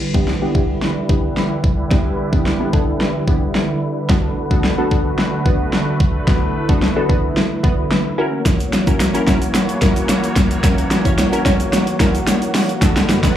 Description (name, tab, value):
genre	dance-pop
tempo	110 BPM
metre	4/4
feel	straight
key	B minor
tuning	A4 = 442 Hz
part	sweeping resonant pad	sustained chords	0.0-13.4 s	F#2 to C#5	-22 LUFS	right 1 dB	chorus, sidechain pumping, low-pass filter, plate reverb
part	wavetable chord stab	accompaniment	0.1-13.4 s	F#3 to C#5	-22 LUFS	equal	sidechain pumping, low-pass filter, plate reverb, slapback echo
part	pop drum kit	drums	0.1-13.4 s	hi-hat, kick drum, snare drum	-16 LUFS	equal	overdrive
part	egg shaker	percussion	8.5-13.4 s	none	-35 LUFS	right 3 dB	none
room	moderate club reverb, RT60 0.8 s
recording	live gig heard through the venue's PA, club reverb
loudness	-14 LUFS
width	side -11 dB against mid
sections	0.0-13.4 A section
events	build-up 0.0-13.4; drum fill 0.0-13.4; filter sweep 0.0-13.4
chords	0.0 Em7; 4.1 Bm7; 8.2 F#7; 12.8 Bm7/F#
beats	0.28 0.82 1.37 | 1.91 2.46 3.00 3.55 | 4.09 4.64 5.18 5.73 | 6.28 6.82 7.37 7.91 | 8.46 9.00 9.55 10.09 | 10.64 11.19 11.73 12.28 | 12.82 13.37